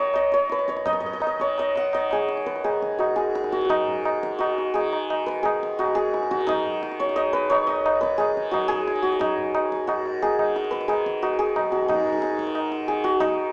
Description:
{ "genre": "indian classical, Hindustani", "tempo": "166-184 BPM", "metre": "4/4", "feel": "straight", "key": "Eb raga malkauns", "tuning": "A4 = 441 Hz", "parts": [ { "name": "santur", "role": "melody", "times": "0.0-13.5 s", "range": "Eb4 to Gb5", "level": "-23 LUFS", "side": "equal", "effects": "none" }, { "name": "tanpura", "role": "drone", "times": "0.0-13.5 s", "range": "Eb2 to Eb3", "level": "-31 LUFS", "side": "equal", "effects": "none" }, { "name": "tabla", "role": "percussion", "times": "0.1-13.3 s", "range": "none", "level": "-26 LUFS", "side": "equal", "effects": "none" } ], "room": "wet large studio reverb, RT60 0.8 s", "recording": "band playing live in one room, small speaker sound", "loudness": "-21 LUFS", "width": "side -28 dB against mid", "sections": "0.0-3.7 A section; 3.7-13.5 B section", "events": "speeding up 0.0-13.5", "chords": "none", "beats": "0.15 0.51 | 0.86 1.22 1.58 1.94 | 2.29 2.64 3.00 3.35 | 3.70 4.05 4.40 4.75 | 5.10 5.45 5.79 6.14 | 6.49 6.83 7.17 7.52 | 7.86 8.20 8.54 8.88 | 9.21 9.55 9.89 10.22 | 10.56 10.89 11.22 11.56 | 11.89 12.22 12.55 12.88 | 13.21" }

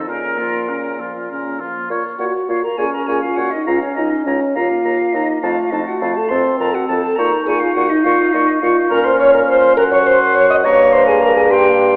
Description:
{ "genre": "quick classical-period movement for wind quintet", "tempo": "68 BPM (dotted quarters)", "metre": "6/8", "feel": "straight", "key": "Bb minor", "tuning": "A4 = 442 Hz", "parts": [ { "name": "warm oboe", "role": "second line", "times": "0.0-12.0 s", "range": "F4 to Db6", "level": "-24 LUFS", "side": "equal", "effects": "none" }, { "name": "mellow French horn", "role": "accompaniment", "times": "0.0-12.0 s", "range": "Db3 to Eb5", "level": "-18 LUFS", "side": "equal", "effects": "none" }, { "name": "mellow clarinet", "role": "accompaniment", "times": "0.0-12.0 s", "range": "A3 to Eb4", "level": "-26 LUFS", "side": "equal", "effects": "none" }, { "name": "mellow bassoon", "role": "bass", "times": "0.0-12.0 s", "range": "Db2 to Bb2", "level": "-23 LUFS", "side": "equal", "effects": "none" }, { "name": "bright concert flute", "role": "melody", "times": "0.1-12.0 s", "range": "Bb4 to Eb6", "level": "-25 LUFS", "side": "equal", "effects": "none" } ], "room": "wet scoring stage reverb, RT60 1.8 s", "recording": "heard from further back in the room, AM radio sound", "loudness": "-15 LUFS", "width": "mono", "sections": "0.0-1.9 A section; 1.9-12.0 A section", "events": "none", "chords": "0.1 Bbm; 3.7 Bbm/Db; 4.6 Eb5; 5.4 F; 7.2 Bbm; 9.8 Gb5; 10.7 Bbm13/G", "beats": "| 0.07 0.99 | 1.90 2.78 | 3.67 4.55 | 5.43 6.30 | 7.18 8.05 | 8.91 9.78 | 10.65 11.51" }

